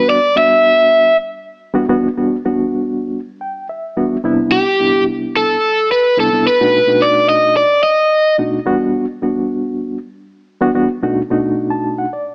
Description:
blues; 108 BPM; 4/4; swing 54% on 16ths; E minor; A4 = 437 Hz
overdriven electric guitar; melody; 0.0-1.2, 4.5-8.3 s; G4 to E5; -14 LUFS; equal
reed electric piano; accompaniment; 0.0-12.3 s; E2 to A5; -19 LUFS; equal; fast tremolo
moderate echo chamber reverb, RT60 1.8 s; small speaker sound; -15 LUFS; mono
0.0-12.3 A section
reed electric piano fill 3.1-4.2, 11.4-12.3
0.0 Em9; 4.2 Cmaj7; 6.5 B7#9; 8.7 Em9; 10.9 B7#9
0.36 0.91 1.47 | 2.02 2.58 3.13 3.68 | 4.24 4.79 5.35 5.90 | 6.45 7.01 7.56 8.12 | 8.67 9.22 9.78 10.33 | 10.88 11.43 11.99

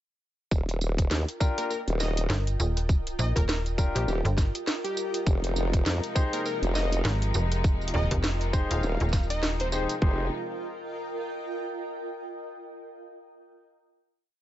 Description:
glitch hop; 101 BPM; 4/4; swing 58% on 16ths; F minor; A4 = 437 Hz
formant-sweep wobble bass; bass; 0.5-10.3 s; Eb1 to F2; -27 LUFS; equal; chorus
drum and bass drum kit; drums; 0.5-10.0 s; hi-hat, rim click, snare drum, tambourine; -33 LUFS; equal
electronic kick drum; drums; 0.5-10.2 s; -25 LUFS; equal
granular cloud pad; texture; 1.3-12.4 s; F4 to G5; -36 LUFS; right 1 dB; built-in reverb, sidechain pumping
warm concert grand piano; stabs; 1.4-10.2 s; D4 to C5; -34 LUFS; left 2 dB; sidechain pumping, tape echo
plucky unison lead; melody; 1.6-9.8 s; G4 to F5; -36 LUFS; left 1 dB; tape echo
slap-like FM bass; bass; 2.3-9.9 s; Eb1 to Bb1; -27 LUFS; equal
rich studio string section; sustained chords; 5.3-10.3 s; C3 to Eb4; -36 LUFS; left 2 dB; sidechain pumping
digital ambience; nothing above 7.8 kHz; -25 LUFS; side -13 dB against mid
0.5-10.0 drop; 10.0-12.4 final chord
drop 0.5-10.0; band accent 9.4
0.5 Eb; 5.3 Fm7
| 0.52 1.11 1.70 2.30 | 2.89 3.48 4.08 4.67 | 5.27 5.86 6.46 7.05 | 7.64 8.24 8.83 9.43 | 10.02 10.61 11.21 11.80

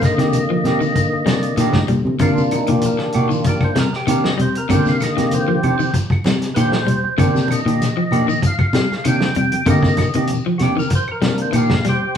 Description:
afrobeat; 96 BPM; 4/4; straight; C minor; A4 = 438 Hz
percussive tonewheel organ; accompaniment; 0.0-12.2 s; D3 to G5; -21 LUFS; left 1 dB; slow rotary speaker, overdrive
semi-hollow electric guitar; stabs; 0.0-12.1 s; Eb3 to G4; -25 LUFS; right 5 dB
warm soul drum kit; drums; 0.0-12.2 s; hi-hat, kick drum, snare drum; -21 LUFS; equal
congas; percussion; 0.0-12.0 s; -26 LUFS; right 1 dB
shekere; percussion; 0.0-12.0 s; -28 LUFS; left 3 dB
electric guitar at the edge of break-up; arpeggios; 0.2-12.1 s; D3 to G3; -22 LUFS; left 2 dB
fingered electric bass; bass; 0.2-12.0 s; A2 to C3; -21 LUFS; left 1 dB
claves; percussion; 2.2-11.7 s; -34 LUFS; right 1 dB
moderate studio reverb, RT60 0.7 s; band playing live in one room, studio reverb; -15 LUFS; side -8 dB against mid
0.0-12.2 A section
tonewheel organ solo 0.0-12.2
0.0 Cm9
0.35 0.97 1.59 | 2.21 2.83 3.45 4.08 | 4.70 5.32 5.94 6.56 | 7.18 7.80 8.43 9.05 | 9.67 10.29 10.91 11.54 | 12.16

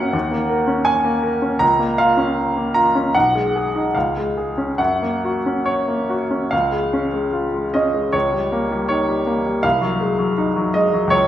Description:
classical, romantic character piece for solo piano; 68-84 BPM; 2/4; rubato; F# major, Db major from 6.5 s; A4 = 440 Hz
bright baby grand piano; solo; 0.0-11.3 s; B1 to A#5; -16 LUFS; equal
wet recital hall reverb, RT60 1.7 s; recorded in a church or concert hall; -17 LUFS; side -11 dB against mid
0.0-6.5 A section; 6.5-11.3 B section
0.1 D#m7; 1.6 A#m/C#; 3.1 G#m/B; 3.9 C#; 4.8 F#; 6.5 Db; 8.1 Eb7/Db; 9.6 Ab7/C
| 0.14 0.86 | 1.61 2.37 | 3.15 3.95 | 4.79 5.66 | 6.52 7.35 | 8.14 8.90 | 9.64 10.38 | 11.12

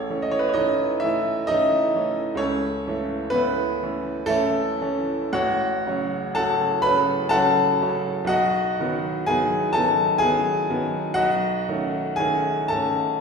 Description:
classical, romantic nocturne for solo piano; 62 BPM; 3/4; uneven beats, rubato; A4 = 441 Hz
clear grand piano; solo; 0.0-13.2 s; A1 to B5; -20 LUFS; equal
wet recital hall reverb, RT60 1.3 s; recorded in a church or concert hall; -20 LUFS; side -5 dB against mid
0.0-13.2 A section
0.0 A; 2.4 A/C#; 5.4 F#m/A; 8.3 B; 11.2 B9
0.58 1.51 | 2.42 3.36 4.32 | 5.39 6.38 7.34 | 8.32 9.30 10.24 | 11.20 12.20

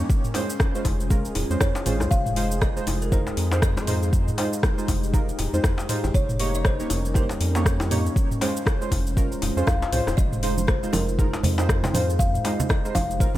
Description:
afro house; 119 BPM; 4/4; swing 58% on 16ths; F minor; A4 = 439 Hz
dark analog pad; sustained chords; 0.0-13.4 s; G3 to C5; -32 LUFS; left 1 dB; chorus, sidechain pumping
round analog bass; bass; 0.0-13.4 s; Eb1 to F2; -26 LUFS; equal; tube saturation, sidechain pumping
afro-pop drum kit; drums; 0.1-13.4 s; hi-hat, rim click, shaker, toms; -29 LUFS; equal; studio reverb
electronic kick drum; drums; 0.1-13.3 s; -23 LUFS; equal; studio reverb
deep mellow chord stab; stabs; 0.3-13.3 s; Ab3 to Db5; -30 LUFS; right 3 dB; ensemble chorus, sidechain pumping, diffuse ambient delay
djembe; percussion; 0.3-13.1 s; -32 LUFS; left 2 dB
kalimba; melody; 1.6-13.4 s; Bb4 to F5; -32 LUFS; left 1 dB; analog delay
congas; percussion; 10.2-13.4 s; -28 LUFS; right 3 dB
light reverb, digital ambience; -20 LUFS; side -14 dB against mid
0.0-13.4 A section
0.1 Dbmaj7; 2.1 Fm7; 6.1 Eb7/F; 8.2 Dbmaj7; 10.2 Fm7
| 0.09 0.60 1.10 1.61 | 2.11 2.62 3.12 3.62 | 4.13 4.63 5.14 5.64 | 6.14 6.65 7.15 7.66 | 8.16 8.67 9.17 9.67 | 10.18 10.68 11.19 11.69 | 12.20 12.70 13.20

